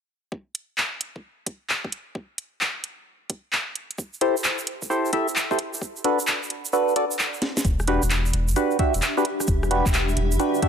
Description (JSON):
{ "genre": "UK garage, two-step garage", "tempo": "131 BPM", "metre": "4/4", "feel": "swing 66% on 16ths", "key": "E minor", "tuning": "A4 = 439 Hz", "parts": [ { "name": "electronic kick drum", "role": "drums", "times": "0.3-10.7 s", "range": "none", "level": "-25 LUFS", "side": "equal", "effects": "overdrive, high-pass filter on kick" }, { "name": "house drum kit", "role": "drums", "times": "0.5-10.7 s", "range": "handclaps, hi-hat, rim click, snare drum", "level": "-25 LUFS", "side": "equal", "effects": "none" }, { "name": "egg shaker", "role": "percussion", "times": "4.0-10.6 s", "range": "none", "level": "-32 LUFS", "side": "right 5 dB", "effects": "none" }, { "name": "percussive organ stab", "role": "stabs", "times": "4.2-10.7 s", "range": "D4 to E5", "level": "-23 LUFS", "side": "equal", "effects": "chorus, phaser, vintage 12-bit sampler grit, ping-pong delay" }, { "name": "saturated sub bass", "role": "bass", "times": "7.6-10.4 s", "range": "E1 to G1", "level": "-24 LUFS", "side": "equal", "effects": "sidechain pumping" }, { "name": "granular cloud pad", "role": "texture", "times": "8.5-10.7 s", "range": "D4 to B5", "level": "-31 LUFS", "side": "left 1 dB", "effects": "built-in reverb, sidechain pumping" } ], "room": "light reverb", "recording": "none", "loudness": "-21 LUFS", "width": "side -7 dB against mid", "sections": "0.3-7.6 A section; 7.6-10.7 B section", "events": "kick drops out 6.7-7.6; drum fill 7.4", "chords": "0.3 N.C.; 4.0 Emadd11; 5.8 Bm7; 7.6 Em7" }